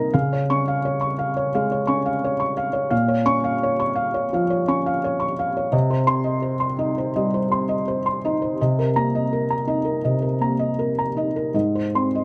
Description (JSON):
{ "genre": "neoclassical minimalist piano", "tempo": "85 BPM", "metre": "4/4", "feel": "rubato", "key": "unclear", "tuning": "A4 = 441 Hz", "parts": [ { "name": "felt-muted upright piano", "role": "solo", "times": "0.0-12.2 s", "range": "Ab2 to Db6", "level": "-22 LUFS", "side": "equal", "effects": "none" } ], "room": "light reverb", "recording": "close, detailed microphones", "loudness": "-22 LUFS", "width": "mono", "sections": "0.0-12.2 A section", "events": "none", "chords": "0.1 Db; 2.9 Bbm; 5.7 Cm; 8.6 Cm7; 11.5 Ab" }